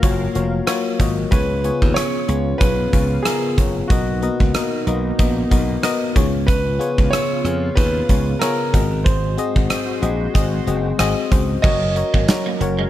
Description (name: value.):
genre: 1980s-style pop.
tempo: 93 BPM.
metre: 4/4.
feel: swing 55% on 16ths.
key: Db mixolydian.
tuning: A4 = 439 Hz.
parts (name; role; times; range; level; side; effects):
warm concert grand piano; melody; 0.0-12.6 s; Gb4 to Eb5; -25 LUFS; right 2 dB; slapback echo.
FM electric piano; accompaniment; 0.0-12.9 s; Ab2 to Eb5; -23 LUFS; left 6 dB; chorus.
sweeping resonant pad; sustained chords; 0.0-12.9 s; Db3 to F5; -28 LUFS; right 3 dB; chorus.
glassy slap bass; bass; 0.0-12.8 s; F1 to F2; -21 LUFS; equal; none.
gated 80s drum kit; drums; 0.0-12.8 s; crash cymbal, hi-hat, kick drum, rim click, snare drum, tambourine; -19 LUFS; equal; none.
clean electric guitar; riff; 11.6-12.9 s; Gb3 to Bb3; -28 LUFS; right 5 dB; analog chorus, slapback echo.
room: little or no reverb.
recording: none.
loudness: -16 LUFS.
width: side -13 dB against mid.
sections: 0.0-11.6 A section; 11.6-12.9 B section.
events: none.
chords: 0.0 Gbmaj7; 1.3 Db7; 3.9 Cbmaj7; 6.2 Db7; 8.7 Ab7; 11.6 Gb.